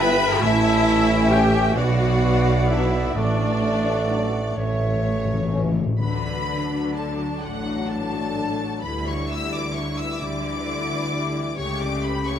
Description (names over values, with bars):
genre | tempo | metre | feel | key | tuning
classical, slow romantic movement for symphony orchestra | 43 BPM (dotted quarters) | 6/8 | rubato | D major | A4 = 441 Hz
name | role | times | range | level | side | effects
clear symphonic violin section | melody | 0.0-12.4 s | C#5 to E6 | -31 LUFS | left 3 dB | none
large flute ensemble | second line | 0.0-5.7 s | E5 to A5 | -31 LUFS | left 4 dB | none
mellow clarinet | second line | 0.0-5.7 s | C#5 to E5 | -30 LUFS | equal | none
warm oboe | second line | 0.0-4.6 s | D5 to B5 | -31 LUFS | right 1 dB | none
warm studio violin section | second line | 0.0-12.4 s | F#4 to B5 | -33 LUFS | left 4 dB | none
rich symphonic viola section | accompaniment | 0.0-12.4 s | C#3 to B4 | -27 LUFS | left 1 dB | none
warm bassoon | accompaniment | 0.0-5.6 s | A3 to C#4 | -29 LUFS | right 1 dB | none
mellow French horn section | sustained chords | 0.0-12.4 s | E3 to G4 | -30 LUFS | left 6 dB | none
clear studio cello section | bass | 0.0-12.4 s | G2 to D3 | -27 LUFS | right 2 dB | none
rich studio double bass section | bass | 0.0-12.4 s | G1 to D2 | -27 LUFS | right 3 dB | none
warm tuba | bass | 0.0-5.8 s | G1 to B1 | -27 LUFS | right 3 dB | none
timpani | percussion | 0.4-7.4 s | A2 to D3 | -27 LUFS | left 3 dB | none
room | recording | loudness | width
light reverb | none | -20 LUFS | side -9 dB against mid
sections
0.0-6.0 A section; 6.0-12.4 B section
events
timpani fill 4.6-6.0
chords
0.4 A; 1.8 Bm; 3.2 D/A; 4.6 A; 6.0 D; 8.8 Em7/D; 11.6 A7/C#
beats
| 0.43 1.77 | 3.17 4.57 | 6.00 7.42 | 8.84 10.20 | 11.57